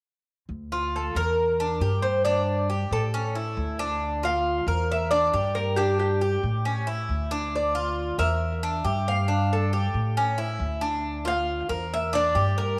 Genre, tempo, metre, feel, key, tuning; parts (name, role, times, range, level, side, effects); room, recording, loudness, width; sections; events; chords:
latin, Cuban son and guajira; 137 BPM; 4/4; straight; D minor; A4 = 441 Hz
upright bass; bass; 0.5-12.8 s; D2 to A2; -30 LUFS; equal
Cuban tres; arpeggios; 0.7-12.8 s; C#4 to Bb4; -31 LUFS; equal
Cuban tres; melody; 1.0-12.8 s; G4 to F5; -29 LUFS; equal; tape echo
moderate echo chamber reverb, RT60 2.1 s; -25 LUFS; mono
0.5-12.8 A section
0.5 Dm; 1.4 Em7b5; 2.3 G5; 3.1 A; 4.0 Dm; 4.9 Em7b5; 5.8 G5; 6.7 A; 7.5 Dm; 8.4 Em7b5; 9.3 G5; 10.2 A; 11.0 Dm; 11.9 Em7b5